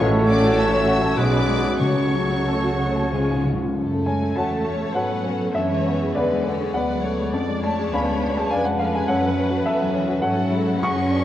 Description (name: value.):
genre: classical.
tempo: 90-107 BPM.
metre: 3/4.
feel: rubato.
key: F# minor.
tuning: A4 = 440 Hz.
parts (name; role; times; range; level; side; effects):
warm baby grand piano; melody; 0.0-11.2 s; B1 to C#6; -22 LUFS; left 1 dB; none.
dark clarinet; second line; 0.0-3.4 s; F#4 to A4; -32 LUFS; left 2 dB; none.
flute section; second line; 0.0-3.4 s; G#5 to B5; -37 LUFS; right 2 dB; none.
warm oboe; second line; 0.0-3.4 s; B4 to C#5; -30 LUFS; equal; none.
warm bassoon; accompaniment; 0.0-3.4 s; E#3 to F#3; -31 LUFS; equal; none.
warm studio viola section; accompaniment; 0.0-11.2 s; G#3 to D5; -31 LUFS; right 1 dB; none.
bright trombone section; sustained chords; 0.0-3.4 s; A2 to A3; -32 LUFS; right 2 dB; none.
dark French horn section; sustained chords; 0.0-3.4 s; G#3 to G#4; -30 LUFS; left 3 dB; none.
warm trumpet section; stabs; 0.0-3.4 s; G#4 to C#5; -33 LUFS; left 1 dB; none.
warm studio cello section; bass; 0.0-11.2 s; A2 to C#4; -29 LUFS; right 2 dB; none.
warm studio double bass section; bass; 0.0-11.2 s; A1 to G#2; -29 LUFS; right 2 dB; none.
warm tuba; bass; 0.0-3.5 s; A1 to C#2; -30 LUFS; right 2 dB; none.
dark studio violin section; melody; 0.3-11.2 s; D5 to E6; -34 LUFS; left 2 dB; none.
warm studio violin section; second line; 0.3-11.2 s; A3 to E5; -32 LUFS; left 4 dB; none.
timpani; percussion; 1.8-3.7, 10.8-11.2 s; F#2 to C#3; -29 LUFS; equal; none.
room: wet concert hall reverb, RT60 2.4 s.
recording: worn, warbling old tape, cassette tape, warbly pitch drift.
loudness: -19 LUFS.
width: side -12 dB against mid.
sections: 0.0-3.8 A section; 3.8-11.2 B section.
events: timpani fill 3.1-3.8.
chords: 0.0 F#m/A; 1.2 G#m7b5/B; 1.8 F#m/C#; 3.1 C#; 3.8 F#m; 5.5 G#m7b5; 7.3 Fdim7; 9.1 F#m.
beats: | 0.01 0.58 1.18 | 1.81 2.47 3.12 | 3.76 4.35 4.94 | 5.54 6.14 6.74 | 7.33 7.93 8.51 | 9.08 9.65 10.22 | 10.82.